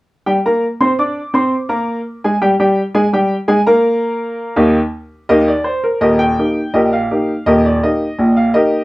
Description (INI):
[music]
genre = ragtime piano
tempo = 83 BPM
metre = 2/4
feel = straight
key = Eb major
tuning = A4 = 439 Hz
[part]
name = clear upright piano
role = solo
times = 0.3-8.8 s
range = Eb1 to D6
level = -12 LUFS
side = equal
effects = none
[sound]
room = moderate studio reverb, RT60 0.5 s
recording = none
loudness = -12 LUFS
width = side -19 dB against mid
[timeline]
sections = 0.3-6.0 A section; 6.0-8.8 B section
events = none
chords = 0.3 Eb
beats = | 0.26 0.99 | 1.71 2.43 | 3.15 3.87 | 4.58 5.31 | 6.04 6.76 | 7.48 8.20